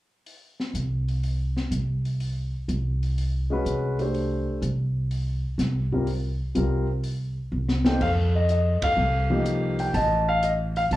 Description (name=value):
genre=jazz piano trio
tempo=124 BPM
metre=4/4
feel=swing 69% on 8ths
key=F mixolydian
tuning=A4 = 439 Hz
part: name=open jazz drum kit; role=drums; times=0.3-11.0 s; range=crash cymbal, hi-hat, kick drum, ride cymbal, snare drum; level=-31 LUFS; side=left 1 dB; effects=none
part: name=upright bass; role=bass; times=0.7-11.0 s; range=A1 to F2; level=-25 LUFS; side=equal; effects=none
part: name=warm concert grand piano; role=melody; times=3.5-11.0 s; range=F3 to A5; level=-24 LUFS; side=left 1 dB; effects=slapback echo
room=light reverb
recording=live gig heard through the venue's PA, club reverb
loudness=-23 LUFS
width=side -16 dB against mid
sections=0.3-8.0 A section; 8.0-11.0 B section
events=drum fill 7.5-8.0; band accent 8.7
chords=0.3 N.C.; 2.2 D7#11/C (rootless); 8.0 F7